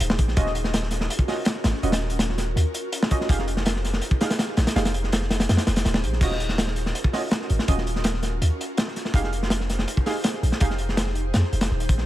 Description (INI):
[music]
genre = drum and bass, jungle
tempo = 164 BPM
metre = 4/4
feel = straight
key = unclear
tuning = A4 = 441 Hz
[part]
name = long sustained 808-style bass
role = bass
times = 0.0-12.1 s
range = Eb1 to F2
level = -24 LUFS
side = equal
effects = none
[part]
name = crunchy breakbeat drum kit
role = drums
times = 0.0-12.1 s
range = crash cymbal, hi-hat, kick drum, snare drum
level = -23 LUFS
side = equal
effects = none
[part]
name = deep mellow chord stab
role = stabs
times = 0.4-10.7 s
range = Db4 to F5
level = -31 LUFS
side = right 3 dB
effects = chorus, dub echo
[sound]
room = small room ambience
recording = none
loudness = -21 LUFS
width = side -14 dB against mid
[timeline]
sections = 0.0-6.2 A section; 6.2-12.1 A section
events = drop 0.0-6.2, 6.2-12.1; kick drops out 5.5-6.2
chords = 0.4 Ebm9; 3.3 Fm9; 6.2 Ebm9; 9.1 Fm9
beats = 0.00 | 0.37 0.73 1.10 1.46 | 1.83 2.20 2.56 2.93 | 3.29 3.66 4.03 4.39 | 4.76 5.12 5.49 5.86 | 6.22 6.59 6.95 7.32 | 7.68 8.05 8.41 8.78 | 9.15 9.51 9.88 10.24 | 10.61 10.98 11.34 11.71